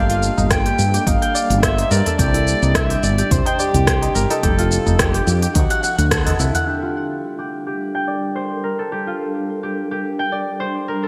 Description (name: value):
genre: organic downtempo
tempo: 107 BPM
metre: 4/4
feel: swing 54% on 16ths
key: G dorian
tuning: A4 = 441 Hz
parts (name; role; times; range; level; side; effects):
- dark kamancheh; melody; 0.0-6.4 s; F#4 to G5; -25 LUFS; equal; digital delay
- ethereal airy pad; sustained chords; 0.2-11.1 s; C3 to E5; -30 LUFS; equal; ensemble chorus, built-in reverb, sidechain pumping
- concert harp; arpeggios; 0.0-11.1 s; D4 to G5; -26 LUFS; equal; low-pass filter, digital delay
- woody fretless electric bass; bass; 0.0-6.5 s; F1 to G2; -20 LUFS; equal; none
- organic electronic drum kit; drums; 0.1-6.7 s; hi-hat, rim click, shaker; -25 LUFS; equal; overdrive, gated reverb
- tabla; percussion; 0.2-6.6 s; none; -30 LUFS; equal; none
- electronic kick drum; drums; 0.5-6.2 s; none; -24 LUFS; equal; overdrive
- bronze singing bowl; texture; 6.7-11.1 s; D4; -32 LUFS; equal; none
room: moderate plate reverb, RT60 1.9 s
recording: bright 1980s-style digital production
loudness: -19 LUFS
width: mono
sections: 0.0-6.7 A section; 6.7-11.1 B section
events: band accent 6.1; filter sweep on harp 6.7-11.1; filter sweep on ambient pad 6.7-11.1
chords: 0.0 Gm7; 2.2 C7; 4.4 Fmaj9; 5.6 D7; 6.7 Gm7